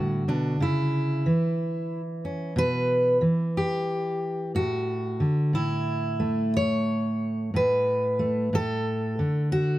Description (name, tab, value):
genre	folk, solo fingerstyle acoustic guitar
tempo	61 BPM (dotted quarters)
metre	6/8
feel	straight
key	D major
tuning	A4 = 442 Hz
part	fingerpicked steel-string acoustic guitar	solo	0.0-9.8 s	A2 to C#5	-23 LUFS	equal	none
room	light reverb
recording	close, detailed microphones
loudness	-23 LUFS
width	side -15 dB against mid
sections	0.0-9.8 A section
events	none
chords	0.0 Bm; 0.6 C#m; 2.6 Em/B; 4.5 Asus4; 5.5 N.C.; 8.5 D/A